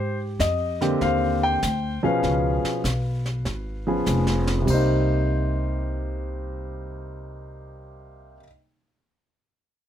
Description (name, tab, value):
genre	jazz piano trio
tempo	98 BPM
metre	4/4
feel	swing 68% on 8ths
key	C minor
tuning	A4 = 439 Hz
part	warm grand piano	melody	0.0-8.5 s	B2 to G5	-24 LUFS	left 1 dB	none
part	upright bass	bass	0.0-8.4 s	F1 to Ab2	-26 LUFS	equal	none
part	jazz brush drum kit	drums	0.4-5.2 s	brushed snare drum, crash cymbal, hi-hat, kick drum, snare drum	-32 LUFS	right 1 dB	none
room	little or no reverb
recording	close, detailed microphones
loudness	-21 LUFS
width	side -10 dB against mid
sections	0.0-4.7 A section; 4.7-7.1 B section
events	drum fill 4.1-4.7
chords	0.0 Abmaj9#11; 2.2 Db7; 4.7 Cm7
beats	0.40 1.01 1.62 | 2.23 2.84 3.45 4.07 | 4.68 5.29 5.90 6.52